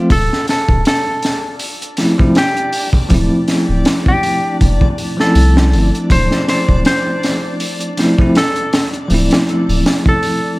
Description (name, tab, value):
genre	trip hop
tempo	80 BPM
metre	4/4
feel	swing 56% on 16ths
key	D minor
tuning	A4 = 439 Hz
part	bell-like tine electric piano	accompaniment	0.0-10.6 s	F3 to F4	-17 LUFS	equal	tremolo, vintage 12-bit sampler grit
part	clean lap steel guitar	melody	0.1-10.6 s	G4 to C5	-20 LUFS	equal	tape echo
part	soft dub sub bass	bass	0.1-9.8 s	D1 to C2	-14 LUFS	equal	none
part	crunchy breakbeat drum kit	drums	0.1-10.4 s	hi-hat, kick drum, snare drum	-15 LUFS	equal	none
part	backwards swelling texture	texture	1.2-10.6 s	D4 to D5	-28 LUFS	left 2 dB	built-in reverb
room	studio reverb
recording	vinyl crackle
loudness	-12 LUFS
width	side -21 dB against mid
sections	0.0-10.6 A section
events	none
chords	0.0 Dm7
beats	| 0.10 0.85 1.60 2.35 | 3.10 3.85 4.60 5.35 | 6.10 6.85 7.60 8.35 | 9.10 9.85